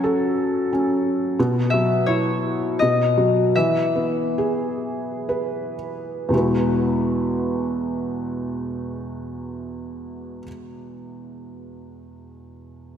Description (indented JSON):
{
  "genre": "children's music, lullaby",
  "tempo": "54-89 BPM",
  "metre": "3/4",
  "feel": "rubato",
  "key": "E major",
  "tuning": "A4 = 439 Hz",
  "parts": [
    { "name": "concert harp", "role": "melody", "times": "0.0-5.3 s", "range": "B4 to E5", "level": "-22 LUFS", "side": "left 5 dB", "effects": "none" },
    { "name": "felt-muted upright piano", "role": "accompaniment", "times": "0.0-13.0 s", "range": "E2 to B4", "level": "-22 LUFS", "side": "equal", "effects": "none" }
  ],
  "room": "wet lush hall reverb, RT60 2.2 s",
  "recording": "dreamy mix soaked in reverb",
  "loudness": "-20 LUFS",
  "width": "side -8 dB against mid",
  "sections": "0.0-6.3 A section; 6.3-12.7 B section",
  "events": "slowing down 1.4-6.3",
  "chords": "0.0 F#m; 1.4 Bsus4; 2.8 B; 3.6 E; 6.3 Eadd9"
}